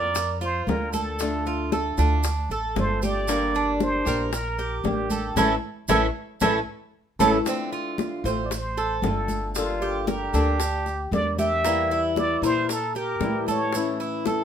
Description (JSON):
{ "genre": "latin, Cuban son and guajira", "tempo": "115 BPM", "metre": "4/4", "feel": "straight", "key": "D minor", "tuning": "A4 = 439 Hz", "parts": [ { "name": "trumpet with plunger mute", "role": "melody", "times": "0.0-14.0 s", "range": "F4 to E5", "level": "-27 LUFS", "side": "right 1 dB", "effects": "none" }, { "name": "flamenco guitar", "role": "accompaniment", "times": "0.0-14.4 s", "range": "D3 to A4", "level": "-28 LUFS", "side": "left 4 dB", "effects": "none" }, { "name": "Cuban tres", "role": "arpeggios", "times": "0.0-14.4 s", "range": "Bb3 to C5", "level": "-28 LUFS", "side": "right 5 dB", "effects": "none" }, { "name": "upright bass", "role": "bass", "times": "0.0-14.4 s", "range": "G1 to Bb2", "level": "-29 LUFS", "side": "equal", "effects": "none" }, { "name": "congas", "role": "percussion", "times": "0.1-14.4 s", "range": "none", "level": "-31 LUFS", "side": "right 1 dB", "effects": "none" }, { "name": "maracas", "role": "percussion", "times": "0.1-14.4 s", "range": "none", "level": "-37 LUFS", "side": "right 5 dB", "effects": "none" }, { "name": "bongos", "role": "percussion", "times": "0.2-14.4 s", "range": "none", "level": "-30 LUFS", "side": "left 6 dB", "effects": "none" } ], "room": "moderate studio reverb, RT60 0.8 s", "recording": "minimal, uncompressed stereo recording", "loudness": "-22 LUFS", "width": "side -8 dB against mid", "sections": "0.0-7.5 A section; 7.5-14.4 A section", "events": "band accent 5.4-7.5", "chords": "0.0 Bbadd9; 1.2 Dm; 3.3 Gm; 5.4 A; 7.5 Dm7; 9.6 Gmadd9; 11.6 Edim; 13.7 A", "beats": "0.14 0.67 | 1.19 1.71 2.24 2.76 | 3.28 3.80 4.33 4.85 | 5.37 5.89 6.42 6.94 | 7.46 7.99 8.51 9.03 | 9.55 10.08 10.60 11.12 | 11.64 12.17 12.69 13.21 | 13.74 14.26" }